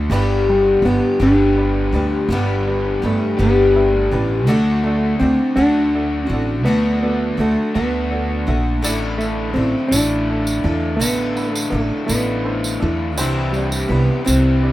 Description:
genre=folk rock and heartland rock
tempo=55 BPM (dotted quarters)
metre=6/8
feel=straight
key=G major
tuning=A4 = 440 Hz
part: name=picked twelve-string acoustic guitar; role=accompaniment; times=0.0-14.7 s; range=G2 to A4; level=-22 LUFS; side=left 3 dB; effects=none
part: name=warm upright piano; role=accompaniment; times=0.0-14.7 s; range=D4 to E5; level=-30 LUFS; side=right 2 dB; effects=none
part: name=raw garage guitar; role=riff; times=0.0-14.7 s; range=G2 to G4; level=-25 LUFS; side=left 1 dB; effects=overdrive
part: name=upright bass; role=bass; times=0.0-14.7 s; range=G1 to E2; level=-20 LUFS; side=equal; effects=none
part: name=hollow-body jazz guitar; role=melody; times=0.5-14.7 s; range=G3 to D4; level=-20 LUFS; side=right 1 dB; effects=none
part: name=tambourine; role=percussion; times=8.8-14.4 s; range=none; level=-26 LUFS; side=right 3 dB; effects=none
room=light reverb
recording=rough home demo mix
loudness=-15 LUFS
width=side -15 dB against mid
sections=0.1-14.7 A section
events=none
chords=0.1 G; 4.5 D; 8.8 Asus4; 13.2 Cadd9

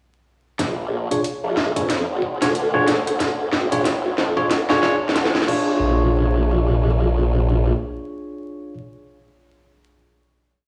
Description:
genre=glitch hop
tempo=92 BPM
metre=4/4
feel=swing 60% on 16ths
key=unclear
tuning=A4 = 440 Hz
part: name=formant-sweep wobble bass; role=bass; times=0.6-7.7 s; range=Ab1 to F2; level=-23 LUFS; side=equal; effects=chorus, overdrive, high-pass filter
part: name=drum and bass drum kit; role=drums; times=0.6-5.6 s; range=crash cymbal, hi-hat, rim click, snare drum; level=-25 LUFS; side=equal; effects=none
part: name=electronic kick drum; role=drums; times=0.6-5.6 s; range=none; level=-36 LUFS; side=equal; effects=high-pass filter on kick
part: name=bell-like tine electric piano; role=stabs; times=1.1-8.7 s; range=D4 to C#5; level=-25 LUFS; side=equal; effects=phaser, sidechain pumping, low-pass filter, dub echo
room=moderate plate reverb, RT60 3.0 s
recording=played on a big sound system in a bare room, stone room reverb, vinyl crackle, faint mains hum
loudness=-20 LUFS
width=mono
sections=0.6-5.8 build; 5.8-8.4 final hit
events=build-up 0.6-5.8; drum fill 0.6-5.8; filter sweep on tine electric piano 0.6-5.8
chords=0.6 Bb7#9

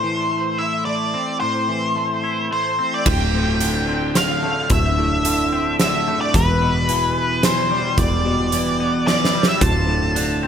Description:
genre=post-rock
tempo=110 BPM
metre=3/4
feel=straight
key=D dorian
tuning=A4 = 440 Hz
part: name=octave-fuzz lead guitar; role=melody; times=0.0-10.5 s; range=B4 to A5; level=-21 LUFS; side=equal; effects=distortion, tape echo
part: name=twangy electric guitar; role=arpeggios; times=0.0-10.5 s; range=D2 to E4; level=-23 LUFS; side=left 2 dB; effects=analog chorus, tape echo
part: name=pedal steel guitar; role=sustained chords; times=3.1-10.5 s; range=B2 to D5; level=-31 LUFS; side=right 3 dB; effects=none
part: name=overdriven picked electric bass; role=bass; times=3.1-10.5 s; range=D1 to E1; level=-23 LUFS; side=equal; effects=none
part: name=big rock drum kit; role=drums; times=3.1-10.3 s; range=crash cymbal, hi-hat, kick drum, snare drum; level=-22 LUFS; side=right 1 dB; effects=none
room=light reverb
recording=none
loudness=-17 LUFS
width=side -8 dB against mid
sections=0.0-3.1 A section; 3.1-10.5 A section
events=drum fill 9.1-9.6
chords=0.0 Am; 3.1 Dm7; 6.3 Em7; 9.6 Dm7

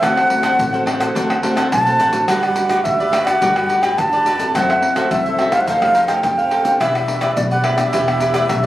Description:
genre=samba and choro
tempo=106 BPM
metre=4/4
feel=straight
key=unclear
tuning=A4 = 444 Hz
part: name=baroque flute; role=melody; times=0.0-8.7 s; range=D5 to A5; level=-16 LUFS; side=equal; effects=plate reverb
part: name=cavaquinho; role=accompaniment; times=0.0-8.7 s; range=D4 to F#5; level=-22 LUFS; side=right 1 dB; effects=none
part: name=nylon-string guitar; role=accompaniment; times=0.0-8.7 s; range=A2 to B4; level=-24 LUFS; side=left 2 dB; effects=none
part: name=upright bass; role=bass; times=0.0-8.7 s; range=E1 to D2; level=-28 LUFS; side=equal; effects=none
part: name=egg shaker, surdo, pandeiro and tamborim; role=percussion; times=0.0-8.7 s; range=none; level=-23 LUFS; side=left 1 dB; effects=none
room=moderate small room reverb, RT60 0.5 s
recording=recorded on a phone in the room, club reverb, compression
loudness=-14 LUFS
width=side -14 dB against mid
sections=0.0-8.7 A section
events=none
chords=0.0 D7; 2.3 Gmaj7; 4.5 F#m7b5; 5.7 F9; 6.8 Em7

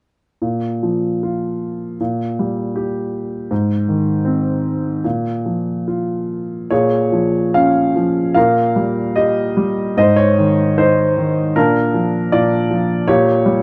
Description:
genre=classical, lyrical solo piano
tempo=76 BPM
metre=4/4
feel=uneven beats, rubato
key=Bb dorian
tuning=A4 = 440 Hz
part: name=warm grand piano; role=solo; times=0.4-13.6 s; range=Ab2 to F5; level=-17 LUFS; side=equal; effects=none
room=moderate small room ambience, RT60 0.5 s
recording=dark, warm production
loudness=-17 LUFS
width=mono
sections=0.4-6.7 A section; 6.7-13.6 B section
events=none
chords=0.4 Bb5; 2.0 Gm/Bb; 3.5 Ab; 5.0 Bb5; 6.7 Bbm7; 8.4 Eb/Bb; 10.0 Ab; 11.6 Bb; 13.1 Bbm6

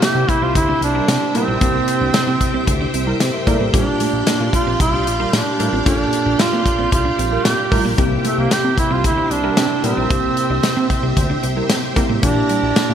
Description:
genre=1980s-style pop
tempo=113 BPM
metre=4/4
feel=straight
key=unclear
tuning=A4 = 435 Hz
part: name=warm duduk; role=melody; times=0.0-12.9 s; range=A3 to G4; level=-20 LUFS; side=right 3 dB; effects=shimmer reverb
part: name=tine electric piano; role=accompaniment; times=0.0-12.9 s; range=Bb2 to E5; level=-24 LUFS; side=left 4 dB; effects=shimmer reverb
part: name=string machine, violins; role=sustained chords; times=0.0-12.9 s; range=G4 to Bb5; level=-25 LUFS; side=equal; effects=ensemble chorus, shimmer reverb
part: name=clean electric guitar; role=riff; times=0.0-12.9 s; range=E3 to F4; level=-28 LUFS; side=right 4 dB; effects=none
part: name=fat analog bass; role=bass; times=0.0-12.9 s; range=A1 to C3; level=-22 LUFS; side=equal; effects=none
part: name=modern studio drum kit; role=drums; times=0.0-12.9 s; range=hi-hat, kick drum, snare drum, tambourine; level=-19 LUFS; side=equal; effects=none
part: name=funky polysynth comp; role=stabs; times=1.0-12.2 s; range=G3 to Bb4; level=-27 LUFS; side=right 2 dB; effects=none
room=moderate lush hall reverb, RT60 1.9 s, studio reverb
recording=bright 1980s-style digital production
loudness=-15 LUFS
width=side -9 dB against mid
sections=0.0-12.9 A section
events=none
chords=0.0 C7; 3.7 Gm7; 8.0 C7; 12.2 Em7b5/Bb

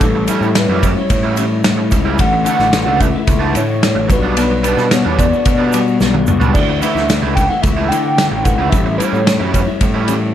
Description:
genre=indie rock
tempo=110 BPM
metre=4/4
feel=straight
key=D major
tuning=A4 = 438 Hz
part: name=hollow square lead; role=melody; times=0.0-10.0 s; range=A4 to G5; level=-20 LUFS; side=right 1 dB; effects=chorus, analog delay
part: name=electric guitar through a small old amp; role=riff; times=0.0-10.3 s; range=A2 to F#4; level=-19 LUFS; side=left 9 dB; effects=wide subtle chorus
part: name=fuzz picked electric bass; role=bass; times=0.0-10.3 s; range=A1 to D3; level=-18 LUFS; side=equal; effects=overdrive
part: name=loose indie drum kit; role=drums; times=0.0-10.2 s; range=crash cymbal, kick drum, ride cymbal, snare drum, toms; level=-17 LUFS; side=equal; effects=none
part: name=egg shaker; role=percussion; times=0.0-10.2 s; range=none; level=-33 LUFS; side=right 12 dB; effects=none
part: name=raw garage guitar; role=riff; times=0.2-10.1 s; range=B2 to E4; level=-22 LUFS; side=right 7 dB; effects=overdrive, ensemble chorus
room=light reverb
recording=none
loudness=-12 LUFS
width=side -10 dB against mid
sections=0.0-10.3 A section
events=drum fill 6.0-6.6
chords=0.0 A7; 2.2 Dsus2/A; 4.1 Gmaj7/B; 6.6 Dsus2; 8.7 A7

